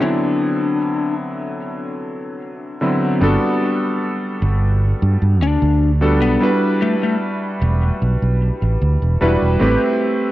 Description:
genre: vaporwave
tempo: 75 BPM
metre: 4/4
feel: straight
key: unclear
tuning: A4 = 440 Hz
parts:
  - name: lightly driven lead guitar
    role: melody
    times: 0.0-7.1 s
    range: A3 to D4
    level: -22 LUFS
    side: left 4 dB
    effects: cassette tape, tape echo
  - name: warm electric grand piano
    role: accompaniment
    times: 0.0-10.3 s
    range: D3 to B4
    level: -19 LUFS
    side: equal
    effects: lush chorus, analog delay
  - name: fretless electric bass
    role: bass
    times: 3.2-9.8 s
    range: E1 to G2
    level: -16 LUFS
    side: right 1 dB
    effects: none
room: moderate spring reverb, RT60 2.4 s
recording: home recording on cassette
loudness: -15 LUFS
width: side -15 dB against mid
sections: 0.0-3.2 A section; 3.2-10.3 B section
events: none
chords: 0.0 Cmaj9#11; 3.2 Gmaj9; 6.4 Em9; 9.6 Am9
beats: | 0.01 0.81 1.61 2.41 | 3.21 4.01 4.81 5.61 | 6.41 7.21 8.01 8.81 | 9.61

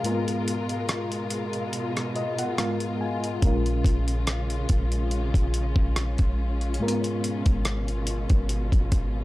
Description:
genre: contemporary R&B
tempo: 71 BPM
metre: 4/4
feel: swing 54% on 16ths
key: G# dorian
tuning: A4 = 440 Hz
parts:
  - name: mellow FM electric piano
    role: accompaniment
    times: 0.0-9.2 s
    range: G#2 to G#5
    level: -30 LUFS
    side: left 1 dB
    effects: chorus, tremolo
  - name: muted studio string section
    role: sustained chords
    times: 0.0-9.2 s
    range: B2 to A#4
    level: -32 LUFS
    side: left 1 dB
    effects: none
  - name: dusty soul sampler-style drum kit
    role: drums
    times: 0.0-9.1 s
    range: hi-hat, kick drum, rim click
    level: -24 LUFS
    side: equal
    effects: none
  - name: clean 808-style bass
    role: bass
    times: 3.4-9.2 s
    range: G#1 to A#1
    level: -26 LUFS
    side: equal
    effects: none
room: digital ambience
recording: dry, gritty hardware recording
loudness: -23 LUFS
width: side -17 dB against mid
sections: 0.0-9.2 A section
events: break 0.0-3.4; FM electric piano fill 1.7-3.4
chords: 0.0 G#m69; 3.4 A#m7; 6.8 G#m69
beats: | 0.04 0.89 1.74 2.58 | 3.42 4.27 5.12 5.96 | 6.80 7.65 8.49

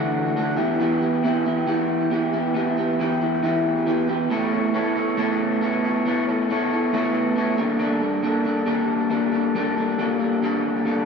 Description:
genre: rock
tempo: 137 BPM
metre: 4/4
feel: straight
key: unclear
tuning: A4 = 440 Hz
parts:
  - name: electric guitar through a small old amp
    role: solo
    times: 0.0-11.1 s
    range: D3 to C#5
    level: -20 LUFS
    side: equal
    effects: wide subtle chorus, ping-pong delay
room: wet lush hall reverb, RT60 2.4 s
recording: dreamy mix soaked in reverb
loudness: -20 LUFS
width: side -5 dB against mid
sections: 0.0-4.3 A section; 4.3-11.1 B section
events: none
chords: 0.0 Dadd9; 0.6 Em; 4.3 Aadd9; 7.6 Gmadd9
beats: 0.35 | 0.79 1.23 1.67 2.11 | 2.55 2.99 3.42 3.86 | 4.30 4.74 5.18 5.61 | 6.05 6.49 6.92 7.36 | 7.80 8.23 8.67 9.11 | 9.54 9.98 10.42 10.85

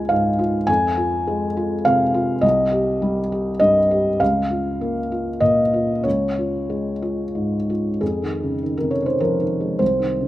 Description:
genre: neoclassical minimalist piano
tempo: 90-106 BPM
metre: 3/4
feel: rubato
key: F minor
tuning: A4 = 440 Hz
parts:
  - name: felt-muted upright piano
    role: solo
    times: 0.0-10.3 s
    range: C2 to Ab5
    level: -18 LUFS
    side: equal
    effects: none
room: moderate plate reverb, RT60 2.4 s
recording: rough home demo mix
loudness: -18 LUFS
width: side -15 dB against mid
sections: 0.0-8.0 A section; 8.0-10.3 B section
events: none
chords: 0.0 Db; 0.7 Fm; 2.4 Cm; 4.2 Bbm/Db; 6.1 Db; 8.0 Fm7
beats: 0.10 | 0.68 1.26 1.85 | 2.43 3.02 3.61 | 4.21 4.81 5.42 | 6.05 6.70 7.36 | 8.01 8.62 9.22 | 9.81

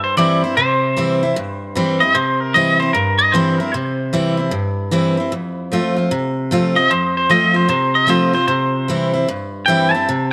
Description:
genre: rock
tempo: 152 BPM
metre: 4/4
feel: swing 64% on 8ths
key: C mixolydian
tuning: A4 = 444 Hz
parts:
  - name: twangy electric guitar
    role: melody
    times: 0.0-10.3 s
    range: Bb4 to A5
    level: -18 LUFS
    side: equal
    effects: tremolo, tape echo
  - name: picked steel-string acoustic guitar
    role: accompaniment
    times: 0.0-10.3 s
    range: F2 to F4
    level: -20 LUFS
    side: equal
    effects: none
room: moderate plate reverb, RT60 2.3 s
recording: none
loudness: -17 LUFS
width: mono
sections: 0.0-10.3 A section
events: clean electric guitar solo 0.0-10.3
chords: 0.0 C; 5.3 F; 8.5 C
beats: 0.18 | 0.58 0.97 1.37 1.76 | 2.16 2.55 2.95 3.34 | 3.74 4.13 4.53 4.92 | 5.32 5.71 6.11 6.51 | 6.90 7.30 7.69 8.09 | 8.48 8.88 9.28 9.67 | 10.07

